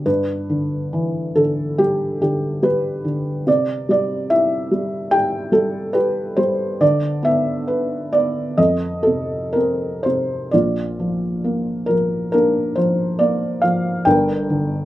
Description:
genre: classical, lyrical solo piano.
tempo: 58-74 BPM.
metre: 4/4.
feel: rubato.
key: Bb major from 10.5 s.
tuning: A4 = 442 Hz.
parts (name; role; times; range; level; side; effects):
felt-muted upright piano; solo; 0.0-14.8 s; G1 to G5; -17 LUFS; equal; none.
room: light reverb.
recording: close, detailed microphones.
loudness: -17 LUFS.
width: side -15 dB against mid.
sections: 0.0-10.5 A section; 10.5-14.8 B section.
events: none.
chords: 0.1 Em7/G; 3.5 C; 6.8 Bmadd11/D; 8.6 F5; 10.5 Bb; 14.1 Gm.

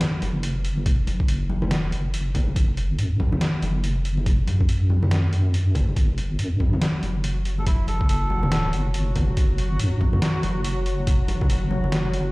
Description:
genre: deep dubstep.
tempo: 141 BPM.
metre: 4/4.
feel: swing 61% on 16ths, half-time.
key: F# minor.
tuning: A4 = 438 Hz.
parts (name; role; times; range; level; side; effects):
trip hop sampler-style drum kit; drums; 0.0-12.2 s; hi-hat, snare drum; -28 LUFS; equal; none.
deep soft wobble bass; bass; 0.2-12.3 s; F#1 to F#2; -23 LUFS; equal; chorus.
congas; percussion; 0.2-11.9 s; none; -29 LUFS; left 1 dB; dub echo.
electronic kick drum; drums; 0.9-11.5 s; none; -21 LUFS; equal; none.
backwards swelling texture; texture; 7.0-12.3 s; F#3 to F#4; -32 LUFS; left 1 dB; built-in reverb.
melodica; melody; 7.6-8.7 s; E4 to A4; -30 LUFS; equal; dub echo.
room: light reverb.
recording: played on a big sound system in a bare room, large studio reverb.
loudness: -20 LUFS.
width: side -23 dB against mid.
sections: 0.0-12.3 A section.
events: none.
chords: none.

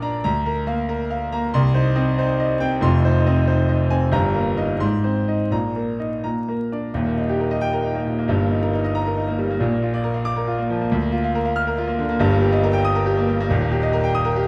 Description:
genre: classical, virtuoso piano study.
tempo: 92 BPM (dotted quarters).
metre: 6/8.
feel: rubato.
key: Eb major.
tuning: A4 = 440 Hz.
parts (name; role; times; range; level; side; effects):
clear concert grand piano; solo; 0.0-14.5 s; Eb1 to F6; -21 LUFS; equal; none.
room: moderate recital hall reverb, RT60 1.3 s.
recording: dark, warm production, vinyl crackle.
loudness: -21 LUFS.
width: mono.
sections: 0.0-6.9 A section; 6.9-14.5 B section.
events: none.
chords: 0.2 Bb/D; 1.5 Cm; 2.8 Fm7; 4.1 Eb/G; 4.8 Ab; 5.5 Eb5/Bb; 6.2 Bb; 6.9 Eb; 8.3 Eb/G; 9.6 Bb; 10.9 Bb/D; 12.2 Eb/G; 13.5 Eb.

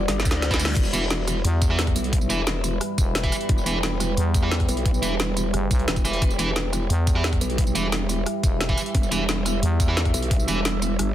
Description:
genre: dark technical drum and bass.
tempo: 176 BPM.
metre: 4/4.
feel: straight.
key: E minor.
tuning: A4 = 443 Hz.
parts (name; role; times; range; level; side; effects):
deep dark ambient pad; sustained chords; 0.0-11.1 s; G3 to E5; -28 LUFS; right 1 dB; chorus, built-in reverb, vintage 12-bit sampler grit, sidechain pumping.
growl bass; bass; 0.0-11.1 s; E1 to D2; -26 LUFS; equal; chorus, tube saturation, sidechain pumping.
drum and bass drum kit; drums; 0.1-11.1 s; crash cymbal, hi-hat, rim click, snare drum, tambourine; -27 LUFS; equal; overdrive, studio reverb.
reverse cymbal; sound effects; 0.2-0.8 s; none; -33 LUFS; left 1 dB; none.
electronic kick drum; drums; 0.3-10.4 s; none; -22 LUFS; equal; studio reverb.
sludgy distorted guitar; stabs; 0.5-10.6 s; E4 to E5; -30 LUFS; right 2 dB; overdrive, digital delay.
growling FM bass; bass; 1.4-10.1 s; E1 to E2; -23 LUFS; equal; tube saturation.
room: light reverb.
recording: dense, heavily limited modern master.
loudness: -20 LUFS.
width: side -12 dB against mid.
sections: 0.0-11.1 A section.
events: drum fill 0.1-0.8; reverse cymbal 0.2-0.8.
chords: 0.0 Emadd9.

